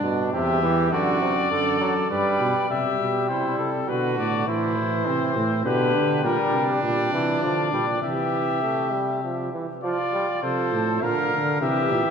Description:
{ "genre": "classical, imitative canzona for brass ensemble", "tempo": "101 BPM", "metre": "3/4", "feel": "straight", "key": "C major, F major from 6.2 s", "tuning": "A4 = 443 Hz", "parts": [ { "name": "clear trumpet", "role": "melody", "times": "0.0-12.1 s", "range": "A4 to F5", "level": "-26 LUFS", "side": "left 7 dB", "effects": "none" }, { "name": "clear trumpet", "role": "second line", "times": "0.0-12.1 s", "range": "C4 to B4", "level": "-27 LUFS", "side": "right 3 dB", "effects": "none" }, { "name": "brilliant trombone", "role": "accompaniment", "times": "0.0-12.1 s", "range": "B2 to A3", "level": "-26 LUFS", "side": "right 2 dB", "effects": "none" }, { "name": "dark bass trombone", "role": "bass", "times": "0.0-12.0 s", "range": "E2 to D3", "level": "-27 LUFS", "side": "right 1 dB", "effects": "none" } ], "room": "wet church reverb, RT60 2.6 s", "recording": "minimal, uncompressed stereo recording", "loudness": "-21 LUFS", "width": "side -6 dB against mid", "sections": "0.0-2.7 A section; 2.7-9.8 B section; 9.8-12.1 C section", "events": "none", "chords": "0.3 C/E; 0.9 D/F#; 2.1 G; 2.7 C; 3.9 Bm; 4.5 Am; 5.7 G/B; 6.2 Gm/Bb; 8.0 C; 9.8 F; 11.0 Bb" }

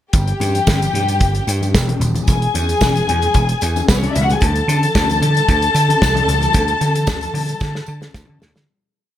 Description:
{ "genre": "disco", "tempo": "112 BPM", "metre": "4/4", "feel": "straight", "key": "unclear", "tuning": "A4 = 441 Hz", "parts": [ { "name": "warm studio string section", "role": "second line", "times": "0.1-8.4 s", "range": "B3 to A5", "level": "-19 LUFS", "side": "left 3 dB", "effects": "none" }, { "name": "vintage slap bass", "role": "bass", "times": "0.1-8.6 s", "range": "Eb1 to D3", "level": "-18 LUFS", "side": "right 1 dB", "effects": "none" }, { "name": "warm soul drum kit", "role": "drums", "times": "0.1-8.7 s", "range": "hi-hat, kick drum, snare drum", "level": "-19 LUFS", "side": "equal", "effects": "none" }, { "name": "congas", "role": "percussion", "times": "0.1-8.7 s", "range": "none", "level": "-26 LUFS", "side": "left 6 dB", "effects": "none" }, { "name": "tambourine", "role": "percussion", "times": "0.1-8.7 s", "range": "none", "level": "-33 LUFS", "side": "right 17 dB", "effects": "none" } ], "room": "light reverb, small room ambience", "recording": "none", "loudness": "-14 LUFS", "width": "side -11 dB against mid", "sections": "0.1-8.7 breakdown", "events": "fade-out 6.5-8.7; drum fill 7.6-8.7", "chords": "0.1 N.C.; 2.3 E; 4.4 D5" }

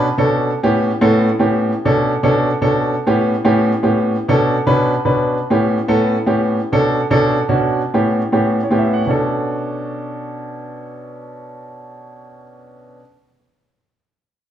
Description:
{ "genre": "jazz", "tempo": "197 BPM", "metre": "4/4", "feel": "straight", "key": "B minor", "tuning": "A4 = 443 Hz", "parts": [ { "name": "warm concert grand piano", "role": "accompaniment", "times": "0.0-13.0 s", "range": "A2 to F#5", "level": "-15 LUFS", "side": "equal", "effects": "none" } ], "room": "wet large studio reverb, RT60 1.2 s", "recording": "band playing live in one room", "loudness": "-14 LUFS", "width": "side -10 dB against mid", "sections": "0.0-9.1 A section; 9.1-11.5 B section", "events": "grand piano fill 8.5-9.1", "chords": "0.0 Bm7; 0.6 A7; 1.8 Bm7; 3.0 A7; 4.2 Bm7; 5.4 A7; 6.6 Bm7; 7.9 A7; 9.1 Bm7" }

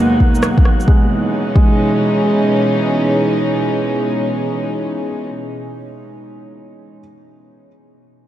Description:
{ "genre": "future garage", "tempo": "133 BPM", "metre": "4/4", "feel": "swing 66% on 16ths", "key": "C# dorian", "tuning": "A4 = 440 Hz", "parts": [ { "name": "warm upright piano", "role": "accompaniment", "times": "0.0-7.0 s", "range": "G#3 to A#3", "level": "-21 LUFS", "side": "right 2 dB", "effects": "sidechain pumping, low-pass filter, tape echo" }, { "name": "warm studio string section", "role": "sustained chords", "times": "0.0-5.2 s", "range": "D#2 to F#4", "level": "-17 LUFS", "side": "equal", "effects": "sidechain pumping" }, { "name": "wind-like tuned noise texture", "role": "texture", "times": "0.0-0.9 s", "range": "F#5", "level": "-31 LUFS", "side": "right 1 dB", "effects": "built-in reverb, analog chorus" }, { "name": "electronic kick drum", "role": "drums", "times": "0.2-1.7 s", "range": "none", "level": "-12 LUFS", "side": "equal", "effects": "overdrive" }, { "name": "electronic shaker and rim click", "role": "drums", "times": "0.3-0.9 s", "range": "none", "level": "-28 LUFS", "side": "equal", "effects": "none" } ], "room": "wet cathedral reverb, RT60 5.9 s", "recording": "dreamy mix soaked in reverb, cassette tape", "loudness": "-13 LUFS", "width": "side -12 dB against mid", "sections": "0.9-4.5 A section", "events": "none", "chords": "0.0 G#m7/D#; 0.9 C#m9" }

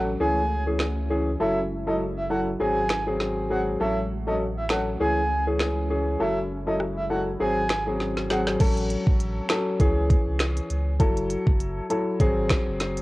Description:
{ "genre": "dancehall", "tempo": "100 BPM", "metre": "4/4", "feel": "swing 56% on 16ths", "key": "C# harmonic minor", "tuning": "A4 = 445 Hz", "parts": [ { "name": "warm grand piano", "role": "accompaniment", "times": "0.0-13.0 s", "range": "E3 to A4", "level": "-26 LUFS", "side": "left 1 dB", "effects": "sidechain pumping, cassette tape" }, { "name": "glassy FM pad", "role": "sustained chords", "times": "0.0-8.6 s", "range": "F#3 to A4", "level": "-37 LUFS", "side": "equal", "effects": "ensemble chorus, built-in reverb, sidechain pumping, cassette tape" }, { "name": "warm sub bass", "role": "bass", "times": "0.0-13.0 s", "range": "F#1 to C#2", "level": "-30 LUFS", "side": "equal", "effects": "none" }, { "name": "breathy flute-like synth lead", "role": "melody", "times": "0.2-8.4 s", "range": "D#5 to G#5", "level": "-29 LUFS", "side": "right 1 dB", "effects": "chorus, analog delay" }, { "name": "island pop drum kit", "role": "drums", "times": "0.8-13.0 s", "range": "crash cymbal, finger snaps, hi-hat, kick drum, rim click, snare drum", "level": "-23 LUFS", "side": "equal", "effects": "cassette tape" } ], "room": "little or no reverb", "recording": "home recording on cassette", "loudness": "-22 LUFS", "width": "side -19 dB against mid", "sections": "0.0-8.6 A section; 8.6-13.0 B section", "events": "drum fill 8.0-8.6", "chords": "0.2 C#m; 1.4 F#m7; 2.6 G#7; 3.8 A6; 5.0 C#m; 6.2 F#m7; 7.4 G#7; 8.6 A6; 9.8 C#m; 11.0 F#m7; 12.2 G#7" }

